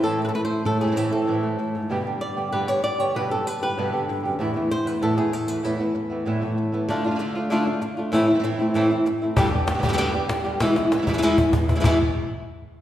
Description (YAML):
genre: flamenco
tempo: 193 BPM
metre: 4/4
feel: straight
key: unclear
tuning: A4 = 440 Hz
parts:
  - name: flamenco guitar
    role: melody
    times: 0.0-12.0 s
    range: E2 to D5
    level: -22 LUFS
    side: equal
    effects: none
  - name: flamenco guitar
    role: stabs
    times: 0.0-12.0 s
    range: E2 to G4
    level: -27 LUFS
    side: right 2 dB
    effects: none
  - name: cajon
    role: percussion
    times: 9.4-11.9 s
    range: none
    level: -24 LUFS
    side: left 1 dB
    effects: none
room: wet scoring stage reverb, RT60 1.5 s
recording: recorded in a church or concert hall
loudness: -20 LUFS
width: side -12 dB against mid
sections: 0.0-6.9 A section; 6.9-11.8 B section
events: drum fill 10.6-11.8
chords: 0.0 Am; 1.9 G; 4.4 Esus4; 6.9 Dm; 8.1 Am; 9.4 G; 10.6 E